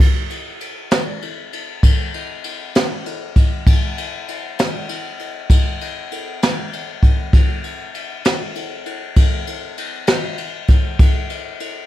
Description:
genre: blues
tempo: 65 BPM (dotted quarters)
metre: 12/8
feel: straight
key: none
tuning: none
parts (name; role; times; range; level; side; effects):
- jazz brush drum kit; drums; 0.0-11.7 s; crash cymbal, kick drum, ride cymbal, snare drum; -17 LUFS; equal; none
room: little or no reverb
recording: none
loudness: -16 LUFS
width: side -14 dB against mid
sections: 0.0-11.9 A section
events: none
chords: none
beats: 0.91 1.83 2.74 | 3.66 4.58 5.49 6.41 | 7.33 8.24 9.16 10.08 | 11.00

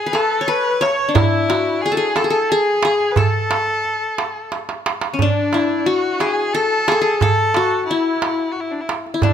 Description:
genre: Arabic maqam ensemble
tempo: 89 BPM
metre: 3/4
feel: straight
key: A maqam ajam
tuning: A4 = 439 Hz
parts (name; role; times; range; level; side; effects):
- qanun; melody; 0.0-9.3 s; C#4 to C#5; -18 LUFS; left 2 dB; none
- warm violin; second line; 0.0-9.3 s; D4 to C#5; -21 LUFS; left 1 dB; none
- darbuka; percussion; 0.1-9.3 s; none; -20 LUFS; right 4 dB; none
room: light reverb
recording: close, detailed microphones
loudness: -16 LUFS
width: side -9 dB against mid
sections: 0.0-5.2 A section; 5.2-9.3 B section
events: drum fill 4.5-5.2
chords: none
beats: 0.48 | 1.15 1.82 2.49 | 3.17 3.84 4.51 | 5.18 5.86 6.53 | 7.20 7.87 8.55 | 9.22

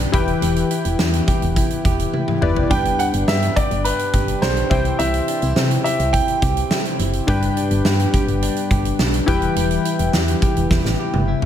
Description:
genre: 1980s-style pop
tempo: 105 BPM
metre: 4/4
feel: straight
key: unclear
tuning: A4 = 440 Hz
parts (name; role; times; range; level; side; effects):
- warm analog keys; accompaniment; 0.0-11.5 s; G2 to G5; -22 LUFS; left 4 dB; chorus
- direct-recorded clean electric guitar; riff; 0.0-11.5 s; E3 to G4; -27 LUFS; right 4 dB; wide subtle chorus, ping-pong delay
- solid FM bass; bass; 0.0-11.5 s; E1 to C3; -21 LUFS; equal; none
- huge arena drum kit; drums; 0.1-11.5 s; hi-hat, kick drum, snare drum, toms; -21 LUFS; equal; gated reverb
- clear baby grand piano; melody; 2.7-7.0 s; B4 to G5; -22 LUFS; right 2 dB; ping-pong delay
room: light reverb, studio reverb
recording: none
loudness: -16 LUFS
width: side -10 dB against mid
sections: 0.0-11.5 A section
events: drum fill 2.1-2.7, 10.7-11.5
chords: 0.1 Em; 2.7 G; 4.7 C; 7.3 G; 9.3 Em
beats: | 0.42 0.99 1.56 2.14 | 2.71 3.28 3.85 4.42 | 4.99 5.57 6.14 6.71 | 7.28 7.85 8.42 8.99 | 9.56 10.14 10.71 11.28

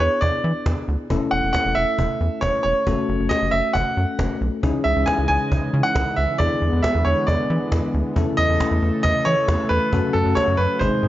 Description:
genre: synth-pop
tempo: 136 BPM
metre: 4/4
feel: straight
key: unclear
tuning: A4 = 440 Hz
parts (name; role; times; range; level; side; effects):
- bright baby grand piano; melody; 0.0-11.1 s; A4 to G#5; -21 LUFS; right 1 dB; slapback echo
- bell-like tine electric piano; accompaniment; 0.0-11.1 s; G#3 to A4; -26 LUFS; left 5 dB; lush chorus
- rubbery square bass; bass; 0.0-11.1 s; E1 to E3; -22 LUFS; equal; none
- cajon; drums; 0.0-11.1 s; none; -27 LUFS; equal; none
- brassy analog pad; sustained chords; 4.6-11.1 s; B#2 to D#5; -27 LUFS; right 1 dB; chorus
room: light reverb, small room ambience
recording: nothing above 7.6 kHz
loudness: -18 LUFS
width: side -14 dB against mid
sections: 0.0-11.1 A section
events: none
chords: 0.0 E7; 1.1 A/E; 2.9 F#m; 4.6 C#madd9; 6.4 E7; 8.2 A/E; 9.9 F#m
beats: 0.22 0.66 | 1.10 1.54 1.99 2.43 | 2.87 3.31 3.75 4.19 | 4.63 5.07 5.51 5.96 | 6.40 6.84 7.28 7.72 | 8.16 8.60 9.04 9.48 | 9.93 10.37 10.81

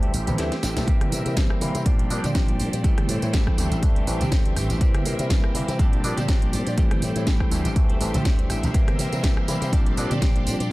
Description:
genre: filtered disco house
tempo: 122 BPM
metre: 4/4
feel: swing 55% on 16ths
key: unclear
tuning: A4 = 440 Hz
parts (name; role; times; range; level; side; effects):
- overdriven tine electric piano; accompaniment; 0.0-10.7 s; E3 to E4; -29 LUFS; equal; phaser, sidechain pumping, low-pass filter
- string machine, full ensemble; sustained chords; 0.0-10.7 s; G4 to C6; -35 LUFS; left 1 dB; phaser, ensemble chorus, sidechain pumping, low-pass filter
- direct-recorded clean electric guitar; riff; 0.0-10.7 s; E3 to G4; -32 LUFS; equal; sidechain pumping, low-pass filter
- slap bass with an envelope filter; bass; 0.0-10.7 s; A1 to C3; -27 LUFS; equal; tube saturation, sidechain pumping, low-pass filter
- house drum kit; drums; 0.0-10.7 s; hi-hat, rim click, snare drum, tambourine; -31 LUFS; right 1 dB; sidechain pumping on hats, small room reverb, sidechain pumping on perc
- congas and tambourine; percussion; 0.0-10.7 s; none; -33 LUFS; right 2 dB; none
- electronic kick drum; drums; 0.9-10.3 s; none; -21 LUFS; equal; small room reverb
room: digital ambience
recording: none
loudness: -20 LUFS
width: side -19 dB against mid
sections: 0.0-10.7 A section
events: kick drops out 0.4-0.9; drum fill 0.4-0.9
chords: 0.0 D9sus4; 0.9 C7; 1.9 Bb69; 2.8 Am7; 3.6 D9sus4; 4.8 C7; 5.8 Bb69; 6.8 Am7; 7.5 D9sus4; 8.7 C7; 9.7 Bb69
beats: 0.38 | 0.88 1.37 1.86 2.35 | 2.84 3.33 3.83 4.32 | 4.81 5.30 5.79 6.29 | 6.78 7.27 7.76 8.25 | 8.74 9.24 9.73 10.22 | 10.71

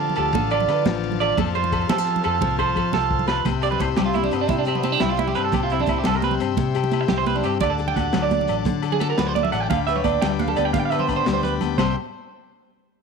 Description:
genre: highlife guitar band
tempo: 115 BPM (dotted quarters)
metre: 12/8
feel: straight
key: C major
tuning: A4 = 440 Hz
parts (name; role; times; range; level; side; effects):
- nylon-string guitar; accompaniment; 0.0-12.0 s; C3 to B4; -26 LUFS; left 12 dB; none
- combo organ; sustained chords; 0.0-12.0 s; C5 to B5; -33 LUFS; left 11 dB; none
- electric guitar at the edge of break-up; arpeggios; 0.0-11.9 s; B3 to G5; -23 LUFS; right 11 dB; slapback echo
- fingered electric bass; bass; 0.0-11.9 s; A1 to F3; -27 LUFS; left 2 dB; none
- congas; percussion; 0.1-11.9 s; none; -28 LUFS; right 10 dB; none
- crunchy breakbeat drum kit; drums; 0.2-11.9 s; china cymbal, hi-hat, kick drum, ride cymbal, snare drum; -29 LUFS; left 2 dB; none
- agogo bells; percussion; 0.2-11.9 s; none; -32 LUFS; left 14 dB; none
room: light reverb, small room ambience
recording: 1960s-style stereo with parts hard left and right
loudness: -19 LUFS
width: side -5 dB against mid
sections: 0.0-3.4 A section; 3.4-11.8 B section; 11.8-13.0 C section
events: drum fill 2.4-3.4, 11.1-11.8; clean electric guitar solo 3.4-11.8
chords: 0.0 Dm; 1.4 F; 3.4 C; 7.6 D; 9.7 G/D; 11.8 C5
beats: 0.34 0.86 | 1.37 1.89 2.41 2.93 | 3.45 3.97 4.49 5.01 | 5.53 6.05 6.57 7.09 | 7.62 8.14 8.66 9.18 | 9.70 10.22 10.74 11.26 | 11.78

